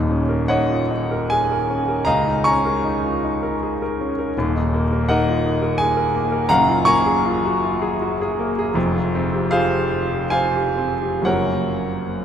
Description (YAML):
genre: classical, impressionist solo piano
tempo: 62-86 BPM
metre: 3/4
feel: rubato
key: Eb minor, F minor from 8.8 s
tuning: A4 = 440 Hz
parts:
  - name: clear grand piano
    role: solo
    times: 0.0-12.2 s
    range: Eb1 to Db6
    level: -17 LUFS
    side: equal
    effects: none
room: wet cathedral reverb, RT60 6.6 s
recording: recorded in a church or concert hall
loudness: -17 LUFS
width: side -8 dB against mid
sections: 0.0-12.2 A section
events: none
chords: 0.0 Ebm9; 2.1 Db69; 4.3 Ebmadd9; 6.5 Gbmaj9; 8.8 Fmadd9; 11.3 Gbmaj7